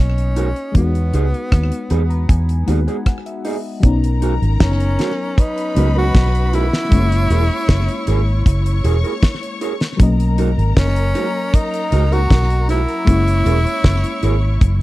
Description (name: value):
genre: lovers rock reggae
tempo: 78 BPM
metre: 4/4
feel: straight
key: B major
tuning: A4 = 439 Hz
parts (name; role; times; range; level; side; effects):
- breathy tenor saxophone; melody; 0.0-14.8 s; B3 to F#4; -23 LUFS; equal; tape echo
- FM electric piano with tremolo; accompaniment; 0.0-14.8 s; F#3 to B5; -24 LUFS; left 4 dB; slapback echo
- vintage muted fingered electric bass; bass; 0.0-14.8 s; E1 to E2; -16 LUFS; equal; none
- damped 70s drum kit; drums; 0.2-14.8 s; hi-hat, kick drum, rim click, snare drum; -14 LUFS; equal; none
- electric guitar through a small old amp; stabs; 0.4-14.3 s; D#4 to B4; -22 LUFS; right 5 dB; none
- warm studio string section; second line; 3.8-14.8 s; A#4 to C#6; -28 LUFS; left 3 dB; none
room: little or no reverb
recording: dry, close 1970s-style studio recording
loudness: -14 LUFS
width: side -17 dB against mid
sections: 0.0-3.8 A section; 3.8-14.8 B section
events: FM electric piano fill 1.5-3.8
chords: 0.0 Bmaj7; 0.7 Emaj7; 3.8 Bmaj7; 6.9 F#9; 10.0 Bmaj7; 13.1 F#9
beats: | 0.75 1.52 2.29 3.06 | 3.83 4.61 5.38 6.15 | 6.92 7.69 8.46 9.23 | 10.00 10.77 11.54 12.30 | 13.07 13.84 14.61